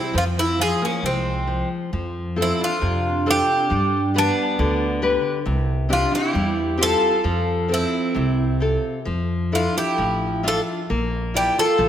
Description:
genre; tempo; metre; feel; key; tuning
fado-style ballad; 67 BPM; 2/4; rubato; F major; A4 = 439 Hz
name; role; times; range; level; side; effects
Greek bouzouki; melody; 0.0-11.9 s; C4 to A4; -22 LUFS; equal; none
fingerpicked twelve-string acoustic guitar; second line; 0.0-11.9 s; Ab3 to F4; -27 LUFS; right 4 dB; none
nylon-string guitar; accompaniment; 0.0-11.9 s; C3 to E5; -25 LUFS; left 2 dB; none
upright bass; bass; 0.1-11.9 s; A1 to G2; -24 LUFS; equal; none
room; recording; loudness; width
moderate scoring stage reverb, RT60 1.8 s; none; -19 LUFS; side -10 dB against mid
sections
0.0-1.9 A section; 1.9-11.9 B section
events
none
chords
0.1 F5; 1.9 F; 3.7 G; 5.5 Csus2; 7.2 F; 9.1 Dmadd9/F; 10.9 Bb

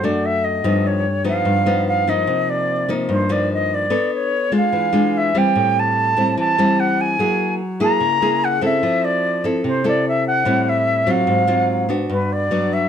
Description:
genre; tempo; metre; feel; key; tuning
bossa nova; 147 BPM; 4/4; straight; unclear; A4 = 444 Hz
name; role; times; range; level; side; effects
silver concert flute; melody; 0.0-12.9 s; B4 to A#5; -19 LUFS; equal; plate reverb
nylon-string guitar; accompaniment; 0.0-12.9 s; F#2 to C#5; -19 LUFS; left 1 dB; none
room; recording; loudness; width
moderate studio ambience, RT60 0.5 s; dark, warm production; -16 LUFS; side -8 dB against mid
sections
0.0-12.1 A section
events
none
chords
0.0 Bm7 (rootless); 0.6 G7b13; 2.3 Cm11; 3.9 Bm9; 4.7 E7b9; 5.6 Am7; 7.2 F#9; 8.8 Fmaj7; 10.5 Am7; 11.3 Ab6; 12.1 Gmaj7

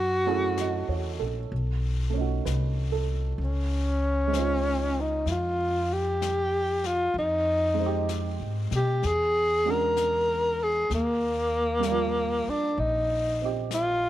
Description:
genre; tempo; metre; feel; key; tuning
jazz ballad; 64 BPM; 4/4; swing 68% on 8ths; unclear; A4 = 442 Hz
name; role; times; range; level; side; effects
breathy tenor saxophone; melody; 0.0-14.1 s; Bb3 to Bb4; -25 LUFS; left 1 dB; none
upright bass; bass; 0.0-14.1 s; Bb1 to Cb3; -29 LUFS; left 1 dB; none
dark baby grand piano; accompaniment; 0.3-14.1 s; F3 to Eb5; -33 LUFS; right 12 dB; none
jazz brush drum kit; drums; 0.6-14.1 s; brushed snare drum, hi-hat, snare drum; -42 LUFS; left 11 dB; none
room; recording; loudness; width
small room ambience; 1960s-style stereo with parts hard left and right; -24 LUFS; side -13 dB against mid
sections
0.0-14.1 A section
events
none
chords
0.0 Gbm7; 1.5 B9; 3.4 Dbmaj7; 7.2 Fm7; 9.0 E13; 10.9 Ebmaj7

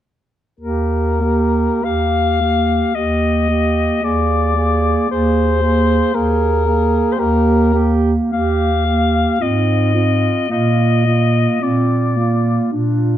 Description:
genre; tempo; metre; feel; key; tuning
classical, lyrical piece for single-reed quartet; 47-58 BPM; 3/4; rubato; Eb major; A4 = 438 Hz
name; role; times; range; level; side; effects
mellow soprano saxophone; melody; 0.6-12.7 s; Bb4 to F5; -19 LUFS; left 7 dB; none
clear alto saxophone; second line; 0.6-13.2 s; F4 to Ab4; -22 LUFS; right 7 dB; none
mellow clarinet; accompaniment; 0.6-13.2 s; Bb3 to D4; -19 LUFS; right 1 dB; none
dark bass clarinet; bass; 0.6-13.2 s; Eb2 to Bb2; -18 LUFS; right 1 dB; none
room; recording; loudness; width
moderate recital hall reverb, RT60 1.6 s; close, detailed microphones; -14 LUFS; side -11 dB against mid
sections
0.6-13.2 A section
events
none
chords
0.6 Eb; 9.4 Fm/Ab; 10.5 Bb

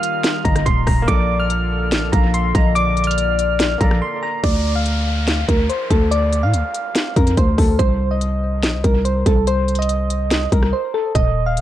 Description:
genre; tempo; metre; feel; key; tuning
hip hop, trap; 143 BPM; 4/4; half-time; D phrygian; A4 = 441 Hz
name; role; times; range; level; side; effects
soft electric-piano-like synth keys; melody; 0.0-11.6 s; A4 to F6; -21 LUFS; right 1 dB; chorus, dub echo
hollow clarinet-like synth lead; second line; 0.0-4.0 s; D5 to F5; -26 LUFS; left 9 dB; chorus, dub echo
clear concert grand piano; accompaniment; 0.0-4.5 s; G3 to D5; -32 LUFS; right 2 dB; none
warbly tape-like pad; sustained chords; 0.0-4.4 s; D3 to A4; -29 LUFS; right 3 dB; chorus, built-in reverb
trap drum kit; drums; 0.0-11.6 s; crash cymbal, hi-hat, kick drum, rim click, snare drum; -19 LUFS; equal; vintage 12-bit sampler grit
growling 808-style bass; bass; 0.5-11.6 s; Eb1 to A2; -19 LUFS; equal; none
downlifter; sound effects; 4.4-7.8 s; none; -30 LUFS; equal; none
room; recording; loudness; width
digital ambience; echo-heavy mix; -15 LUFS; side -12 dB against mid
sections
0.0-4.4 A section; 4.4-11.6 B section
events
break 4.0-4.4, 10.7-11.2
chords
0.0 Ebadd9; 1.1 Bbmaj7; 4.4 Dm; 7.8 Cm7

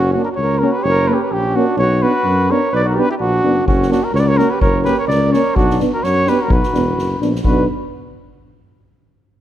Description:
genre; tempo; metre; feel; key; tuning
balkan folk, Balkan brass band; 128 BPM; 2/4; swing 56% on 16ths; B harmonic minor; A4 = 440 Hz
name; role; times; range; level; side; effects
dark trumpet; melody; 0.0-7.7 s; F#4 to D5; -18 LUFS; equal; none
mellow flugelhorn; second line; 0.0-7.6 s; C#4 to B4; -23 LUFS; right 3 dB; none
mellow tuba; bass; 0.0-7.6 s; E1 to F#2; -18 LUFS; left 1 dB; none
dark euphonium; accompaniment; 0.1-7.7 s; A#3 to B3; -23 LUFS; right 5 dB; none
mellow euphonium; accompaniment; 0.1-7.7 s; C#4 to D4; -23 LUFS; left 5 dB; none
soft-mallet drum kit; percussion; 3.7-7.7 s; kick drum, snare drum; -21 LUFS; equal; none
room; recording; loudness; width
moderate scoring stage reverb, RT60 1.5 s; none; -13 LUFS; side -12 dB against mid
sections
0.0-7.4 A section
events
none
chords
0.0 F#; 1.8 Bm; 3.7 F#; 5.6 Bm

